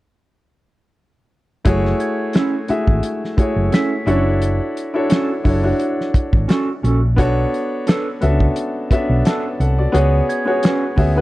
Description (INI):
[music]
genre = lush 1970s-style soul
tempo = 87 BPM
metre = 4/4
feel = swing 54% on 16ths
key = F# minor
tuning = A4 = 440 Hz
[part]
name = warm baby grand piano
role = accompaniment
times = 1.6-11.2 s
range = A3 to A5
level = -19 LUFS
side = left 1 dB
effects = none
[part]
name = hollow-body short-scale fingered electric bass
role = bass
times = 1.7-11.2 s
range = F#1 to D2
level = -17 LUFS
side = equal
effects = none
[part]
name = warm soul drum kit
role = drums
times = 1.7-11.2 s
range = hi-hat, kick drum, snare drum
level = -16 LUFS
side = equal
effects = none
[part]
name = glockenspiel with rubber mallets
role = texture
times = 2.0-4.4, 10.3-11.2 s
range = G#6 to B6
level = -31 LUFS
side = right 2 dB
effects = none
[part]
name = mellow electric guitar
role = riff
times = 2.3-10.8 s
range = C#4 to B4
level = -21 LUFS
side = right 3 dB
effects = none
[sound]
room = little or no reverb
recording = dry, close 1970s-style studio recording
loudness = -15 LUFS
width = side -18 dB against mid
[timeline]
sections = 1.7-11.2 A section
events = none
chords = 1.7 F#m7; 4.1 Dmaj7/F#; 7.2 Bm7; 9.9 C#7sus4